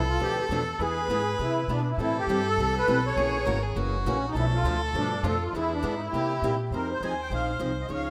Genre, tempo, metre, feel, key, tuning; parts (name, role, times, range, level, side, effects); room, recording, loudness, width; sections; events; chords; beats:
acoustic string swing (jazz manouche); 203 BPM; 4/4; swing 59% on 8ths; A4 = 440 Hz
musette accordion; melody; 0.0-8.1 s; C#4 to Ab5; -31 LUFS; equal
warm violin; second line; 0.0-8.1 s; E4 to Db5; -34 LUFS; equal
picked steel-string acoustic guitar; accompaniment; 0.0-8.1 s; B2 to A4; -34 LUFS; equal
upright bass; bass; 0.0-8.1 s; F#1 to C3; -33 LUFS; equal
moderate lush hall reverb, RT60 2.5 s; rough home demo mix; -27 LUFS; mono
0.0-6.7 A section; 6.7-8.1 B section
0.0 Bdim; 0.8 E; 2.0 Am7; 3.2 F#7; 4.4 Bm7b5; 5.5 E7; 6.1 C7; 6.7 Fm7
0.21 0.51 | 0.80 1.10 1.40 1.69 | 1.99 2.28 2.58 2.87 | 3.17 3.47 3.76 4.06 | 4.35 4.65 4.95 5.24 | 5.54 5.83 6.13 6.42 | 6.72 7.02 7.31 7.61 | 7.91